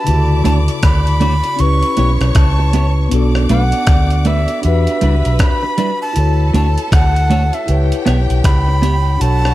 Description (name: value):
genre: lovers rock reggae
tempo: 79 BPM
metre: 4/4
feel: swing 61% on 16ths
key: unclear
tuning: A4 = 439 Hz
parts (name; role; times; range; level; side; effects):
- breathy bright jazz flute; melody; 0.0-9.5 s; E5 to C#6; -20 LUFS; right 1 dB; tape echo
- clear studio string section; second line; 0.0-9.5 s; F#4 to D6; -27 LUFS; left 1 dB; dub echo
- mellow tine electric piano; accompaniment; 0.0-9.5 s; C#3 to C#5; -22 LUFS; left 2 dB; medium stereo tremolo, dub echo
- vintage muted fingered electric bass; bass; 0.1-9.5 s; B1 to E2; -14 LUFS; equal; none
- breakbeat sampler-style drum kit; drums; 0.1-9.5 s; hi-hat, kick drum, rim click; -16 LUFS; equal; gated reverb
- clean electric guitar; stabs; 0.4-9.0 s; G3 to C#5; -19 LUFS; right 3 dB; lush chorus
room: little or no reverb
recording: none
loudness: -11 LUFS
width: side -15 dB against mid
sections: 0.0-9.5 A section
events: none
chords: 0.1 Dmaj7; 1.6 C#m7b5; 3.1 Bm7; 4.6 Em7; 6.2 Dmaj7; 7.7 C#m7b5